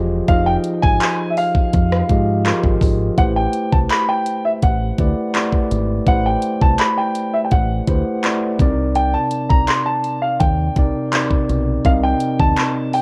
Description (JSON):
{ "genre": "contemporary R&B", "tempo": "83 BPM", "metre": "4/4", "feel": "straight", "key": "unclear", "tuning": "A4 = 440 Hz", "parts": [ { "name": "mellow tine electric piano", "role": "accompaniment", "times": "0.0-13.0 s", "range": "C3 to Eb5", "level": "-24 LUFS", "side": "equal", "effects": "none" }, { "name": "deep dub fingered electric bass", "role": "bass", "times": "0.0-12.5 s", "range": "E1 to Ab2", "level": "-23 LUFS", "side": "equal", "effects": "none" }, { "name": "dark grand piano", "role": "melody", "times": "0.3-13.0 s", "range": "E5 to C6", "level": "-23 LUFS", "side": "equal", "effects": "none" }, { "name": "smooth R&B drum kit", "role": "drums", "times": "0.3-13.0 s", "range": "handclaps, hi-hat, kick drum, rim click", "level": "-20 LUFS", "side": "equal", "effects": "cassette tape" } ], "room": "digital ambience", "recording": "home recording on cassette", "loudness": "-17 LUFS", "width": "mono", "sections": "0.0-13.0 A section", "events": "none", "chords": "0.0 Fm7; 3.2 Am7; 8.6 Cm7", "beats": "| 0.28 1.01 1.73 2.45 | 3.17 3.90 4.62 5.34 | 6.07 6.79 7.51 8.23 | 8.96 9.68 10.40 11.13 | 11.85 12.57" }